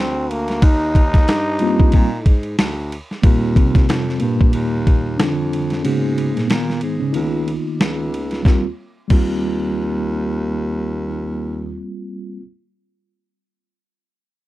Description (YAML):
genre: hip hop, jazz-hop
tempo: 92 BPM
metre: 4/4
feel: swing 59% on 16ths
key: Eb major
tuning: A4 = 440 Hz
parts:
  - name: growling trombone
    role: melody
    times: 0.0-2.6 s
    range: Bb3 to Eb4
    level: -21 LUFS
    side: equal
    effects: none
  - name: clear baritone saxophone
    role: bass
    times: 0.0-11.8 s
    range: Db2 to Bb2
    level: -24 LUFS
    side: equal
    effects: none
  - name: boom bap sampler-style drum kit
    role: drums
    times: 0.3-9.3 s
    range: crash cymbal, hi-hat, kick drum, ride cymbal, snare drum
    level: -15 LUFS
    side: equal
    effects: none
  - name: mellow tine electric piano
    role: accompaniment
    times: 1.6-12.4 s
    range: Bb2 to Gb4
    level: -21 LUFS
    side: equal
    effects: medium stereo tremolo
room: light reverb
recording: dark, warm production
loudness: -16 LUFS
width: side -16 dB against mid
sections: 0.0-3.2 A section; 3.2-8.5 B section; 8.5-11.1 C section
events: tine electric piano solo 3.2-8.5; break 5.8-8.5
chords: 0.0 Eb6; 5.8 Abm9; 7.1 Db13; 8.5 Eb6